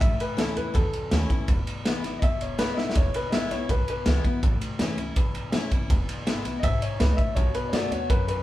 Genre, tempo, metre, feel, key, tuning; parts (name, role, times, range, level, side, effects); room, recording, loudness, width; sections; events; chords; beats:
rockabilly; 163 BPM; 4/4; straight; E major; A4 = 438 Hz
warm upright piano; melody; 0.0-8.4 s; A4 to E5; -30 LUFS; left 1 dB
picked steel-string acoustic guitar; accompaniment; 0.0-8.4 s; E2 to F#4; -31 LUFS; left 3 dB
upright bass; bass; 0.0-8.4 s; E1 to F#2; -30 LUFS; right 1 dB
raw garage drum kit; drums; 0.0-8.4 s; kick drum, ride cymbal, snare drum; -25 LUFS; equal
moderate large studio reverb, RT60 1.0 s; band playing live in one room; -23 LUFS; side -15 dB against mid
0.0-8.4 A section
upright piano solo 0.0-8.4; drum fill 2.8
0.0 A; 1.5 E; 4.4 A; 5.9 E; 7.4 B7
| 0.01 0.38 0.75 1.12 | 1.49 1.85 2.22 2.59 | 2.96 3.33 3.69 4.06 | 4.43 4.80 5.17 5.53 | 5.90 6.27 6.63 7.00 | 7.37 7.74 8.10